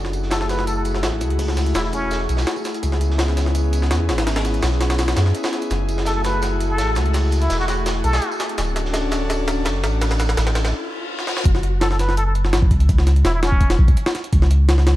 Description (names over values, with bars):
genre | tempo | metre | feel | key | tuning
drum and bass, jungle | 167 BPM | 4/4 | straight | F# minor | A4 = 441 Hz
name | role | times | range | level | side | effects
airy breathy pad | sustained chords | 0.0-10.7 s | A3 to A4 | -25 LUFS | left 1 dB | chorus
soft dub sub bass | bass | 0.0-15.0 s | D1 to F#2 | -19 LUFS | equal | none
jungle sampler-style drum kit | drums | 0.0-15.0 s | hi-hat, kick drum, snare drum | -22 LUFS | equal | overdrive, high-pass filter on hats, studio reverb, high-pass filter on kick, high-pass filter on snare
crunchy breakbeat drum kit | drums | 0.1-10.7 s | hi-hat, snare drum, tambourine | -32 LUFS | right 3 dB | high-pass filter on hats, studio reverb, high-pass filter on snare, high-pass filter on perc, high-pass filter on room
trumpet with plunger mute | melody | 0.3-2.2, 6.1-8.3, 11.8-13.7 s | C#4 to B4 | -26 LUFS | equal | dub echo
riser and reverse cymbal | sound effects | 8.5-11.5 s | none | -32 LUFS | left 3 dB | none
room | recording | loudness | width
light reverb, small room ambience | dark, warm production, vinyl crackle | -17 LUFS | side -15 dB against mid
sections
0.0-11.5 A section; 11.5-15.0 B section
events
build-up 0.0-11.5; drum fill 5.7-10.7, 11.2; riser 8.5-11.5; break 10.7-11.5; reverse cymbal 10.7-11.5; drop 11.5-15.0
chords
0.0 F#m9; 2.8 C#m7; 5.7 F#m9; 8.6 Dmaj7; 11.5 F#7(no3); 14.3 N.C.